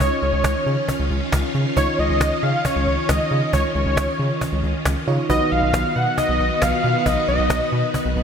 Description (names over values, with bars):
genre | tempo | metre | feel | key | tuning
synth-pop | 136 BPM | 4/4 | straight | unclear | A4 = 439 Hz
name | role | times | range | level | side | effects
wide unison lead | melody | 0.0-8.1 s | C#5 to F#5 | -22 LUFS | equal | shimmer reverb, ping-pong delay
FM electric piano | accompaniment | 0.0-8.2 s | D#4 to C#5 | -30 LUFS | right 3 dB | chorus, shimmer reverb
string machine, full ensemble | sustained chords | 0.0-8.2 s | D#3 to F#4 | -25 LUFS | equal | ensemble chorus, shimmer reverb
rubbery square bass | bass | 0.0-8.2 s | B1 to C#3 | -22 LUFS | equal | none
cajon | drums | 0.0-8.2 s | none | -25 LUFS | equal | none
room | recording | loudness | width
moderate lush hall reverb, RT60 2.0 s | bright 1980s-style digital production | -17 LUFS | side -7 dB against mid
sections
0.0-8.2 A section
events
none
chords
0.0 C#add9; 5.3 B